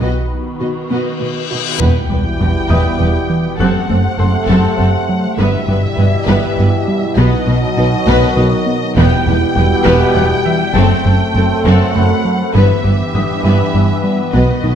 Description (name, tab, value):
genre	cinematic, hybrid orchestral and electronic film score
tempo	67 BPM (dotted quarters)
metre	6/8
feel	straight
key	E harmonic minor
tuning	A4 = 441 Hz
part	dark symphonic violin section	second line	0.0-14.7 s	A4 to D#5	-24 LUFS	left 4 dB	none
part	warm symphonic viola section	accompaniment	0.0-14.7 s	B3 to F#4	-23 LUFS	equal	low-pass filter
part	phased analog pad	sustained chords	0.0-14.8 s	B2 to F#5	-23 LUFS	left 1 dB	phaser, chorus, low-pass filter
part	glassy wavetable pluck	arpeggios	0.0-14.8 s	E3 to F#4	-23 LUFS	left 3 dB	chorus, low-pass filter, digital delay
part	dark symphonic cello section	bass	0.0-14.7 s	E2 to B2	-18 LUFS	right 2 dB	none
part	rich symphonic double bass section	bass	0.0-14.7 s	E1 to B1	-19 LUFS	right 2 dB	none
part	reverse cymbal and sub drop	sound effects	1.0-3.6 s	none	-23 LUFS	left 3 dB	none
part	bright grand piano	texture	0.0-7.2, 10.2-14.8 s	G4 to F#6	-29 LUFS	left 4 dB	digital delay
part	warm symphonic violin section	melody	1.8-14.8 s	D#5 to G5	-21 LUFS	left 2 dB	low-pass filter
part	warm French horn section	sustained chords	1.8-14.8 s	B2 to B4	-22 LUFS	left 2 dB	low-pass filter
part	warm trombone section	sustained chords	1.8-14.8 s	F#2 to A3	-23 LUFS	right 3 dB	low-pass filter
part	round analog bass	riff	1.8-14.8 s	E2 to B3	-17 LUFS	right 1 dB	low-pass filter
room	moderate scoring stage reverb, RT60 1.4 s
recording	dark, warm production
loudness	-11 LUFS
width	side -8 dB against mid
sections	0.0-1.8 A section; 1.8-14.8 B section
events	filter sweep 0.0-1.8; reverse cymbal 1.0-1.8; impact 1.8-3.6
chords	0.0 B; 1.8 Em; 3.6 F#dim; 5.4 Em/G; 7.2 B; 9.0 Em; 10.8 F#dim; 12.6 Em/G